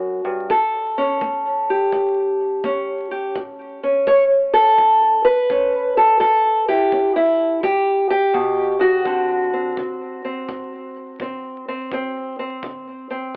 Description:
acoustic country blues, solo or duo; 84 BPM; 4/4; swing 65% on 8ths; A4 = 440 Hz
fingerpicked steel-string acoustic guitar; melody; 0.0-13.4 s; D2 to C#5; -16 LUFS; equal; cassette tape
kick drum; drums; 0.5-12.8 s; -39 LUFS; equal; cassette tape
moderate spring reverb, RT60 1.5 s, small room ambience; home recording on cassette, vinyl crackle, telephone sound; -15 LUFS; side -28 dB against mid
0.0-13.4 A section
0.5 A7; 9.1 D7
| 0.50 1.21 1.92 2.64 | 3.35 4.06 4.78 5.49 | 6.20 6.92 7.63 8.34 | 9.06 9.77 10.48 11.20 | 11.91 12.63 13.34

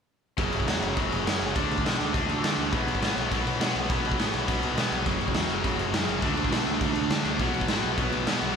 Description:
punk rock; 205 BPM; 4/4; straight; F# minor; A4 = 439 Hz
raw garage guitar; riff; 0.4-8.6 s; F#2 to D4; -31 LUFS; right 10 dB; overdrive, slapback echo
tight distorted guitar; riff; 0.4-8.6 s; F#2 to D4; -30 LUFS; left 11 dB; distortion, slapback echo
growling picked electric bass; bass; 0.4-8.5 s; F#1 to D3; -34 LUFS; equal; overdrive
raw garage drum kit; drums; 0.4-8.5 s; crash cymbal, kick drum, snare drum; -28 LUFS; equal
sludgy distorted guitar; riff; 5.1-8.6 s; F#2 to D4; -33 LUFS; equal; overdrive, slapback echo
moderate lush hall reverb, RT60 2.1 s; big arena sound; -24 LUFS; side -6 dB against mid
0.4-8.6 A section
0.4 F#5; 1.6 D5; 2.7 B5; 5.1 F#5; 6.2 D5; 7.4 B5
| 0.38 0.68 0.97 1.26 | 1.55 1.85 2.14 2.43 | 2.72 3.02 3.31 3.60 | 3.89 4.18 4.48 4.77 | 5.06 5.35 5.64 5.94 | 6.23 6.52 6.81 7.10 | 7.40 7.69 7.98 8.27

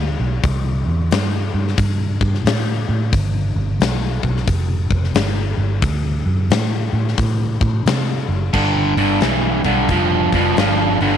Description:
blues rock power trio and southern rock; 89 BPM; 4/4; swing 64% on 8ths; G mixolydian; A4 = 442 Hz
vintage muted fingered electric bass; bass; 0.0-11.2 s; F1 to C3; -19 LUFS; right 1 dB
huge arena drum kit; drums; 0.4-11.1 s; crash cymbal, hi-hat, kick drum, snare drum; -21 LUFS; left 4 dB
crunchy overdriven guitar; riff; 8.5-11.2 s; G2 to F3; -15 LUFS; right 1 dB
light reverb, small room ambience; 1960s-style stereo; -16 LUFS; side -9 dB against mid
0.0-8.5 A section; 8.5-11.2 B section
0.4 C5; 3.1 G; 5.8 D; 8.5 G
| 0.44 1.11 1.79 2.46 | 3.13 3.81 4.48 5.16 | 5.83 6.51 7.19 7.86 | 8.54 9.22 9.90 10.58

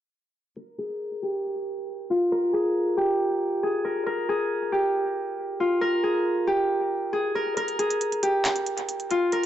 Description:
hip hop, trap; 137 BPM; 4/4; half-time; A4 = 440 Hz
Celtic harp; melody; 0.6-9.5 s; F4 to Bb4; -23 LUFS; equal; low-pass filter, analog delay
trap drum kit; drums; 7.6-9.5 s; handclaps, hi-hat; -30 LUFS; right 1 dB; analog delay
moderate echo chamber reverb, RT60 1.7 s, small room reverb; echo-heavy mix, nothing above 8.0 kHz; -23 LUFS; side -11 dB against mid
0.6-7.6 A section; 7.6-9.5 B section
filter sweep on harp 0.6-7.6; kick muted 7.6-9.5
| 0.56 1.00 1.44 1.88 | 2.31 2.75 3.19 3.63 | 4.07 4.50 4.94 5.38 | 5.82 6.26 6.70 7.13 | 7.57 8.01 8.45 8.88 | 9.32

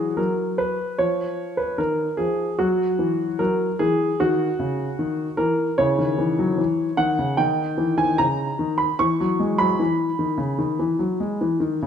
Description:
classical-period piano sonatina; 75 BPM; 4/4; rubato; A4 = 438 Hz
warm grand piano; solo; 0.0-11.9 s; C#3 to C#6; -20 LUFS; equal
moderate recital hall reverb, RT60 1.5 s; minimal, uncompressed stereo recording; -20 LUFS; side -8 dB against mid
0.0-11.9 A section
0.0 Eadd9; 1.0 D#9sus4; 2.6 C#madd11; 7.4 C#m13; 9.0 E
0.18 0.99 1.79 | 2.59 3.40 4.19 4.98 | 5.79 6.59 7.40 8.20 | 9.00 9.80 10.60 11.41

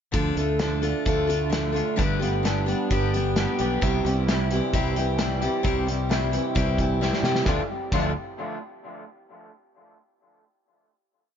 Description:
folk rock and heartland rock; 131 BPM; 4/4; straight; D dorian; A4 = 437 Hz
picked steel-string acoustic guitar; accompaniment; 0.1-8.1 s; G2 to A4; -28 LUFS; left 4 dB; analog delay
electric guitar through a small old amp; riff; 0.1-8.1 s; G2 to G4; -28 LUFS; right 2 dB; analog chorus, analog delay
fingered electric bass; bass; 0.1-8.1 s; G1 to C3; -27 LUFS; right 1 dB
loose indie drum kit; drums; 0.1-8.0 s; crash cymbal, hi-hat, kick drum, snare drum; -28 LUFS; equal
light reverb; echo-heavy mix, nothing above 7.5 kHz; -22 LUFS; side -8 dB against mid
0.1-7.5 verse; 7.5-9.3 final chord
drum fill 7.0-7.5
0.1 Dm; 2.0 G; 3.8 C; 7.5 Dm
| 0.14 0.60 1.06 1.52 | 1.98 2.44 2.90 3.36 | 3.82 4.28 4.73 5.19 | 5.64 6.10 6.55 7.01 | 7.46 7.92

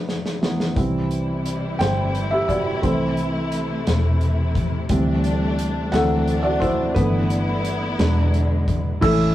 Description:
six-eight pop ballad; 58 BPM (dotted quarters); 6/8; straight; A4 = 440 Hz
felt-muted upright piano; accompaniment; 0.0-9.3 s; E3 to G5; -22 LUFS; right 1 dB
modern studio drum kit; drums; 0.1-9.2 s; crash cymbal, hi-hat, kick drum, snare drum; -25 LUFS; left 1 dB
warm symphonic string section; sustained chords; 0.8-9.0 s; C3 to E4; -27 LUFS; left 2 dB
vintage muted fingered electric bass; bass; 0.8-9.3 s; E1 to D2; -23 LUFS; equal
celesta; second line; 9.0-9.3 s; E6; -23 LUFS; right 8 dB
direct-recorded clean electric guitar; arpeggios; 9.0-9.3 s; A2 to A4; -27 LUFS; left 2 dB
wet studio reverb, RT60 0.6 s; rough rehearsal-room recording; -18 LUFS; side -14 dB against mid
0.0-9.0 A section
drum fill 0.0-0.8; felt piano solo 0.0-9.0
0.0 D6; 0.8 C; 2.8 Am/C; 4.9 D7sus4; 5.9 D7; 7.0 G6; 8.0 E7
| 0.77 1.80 | 2.83 3.87 | 4.90 5.93 | 6.96 8.00 | 9.03

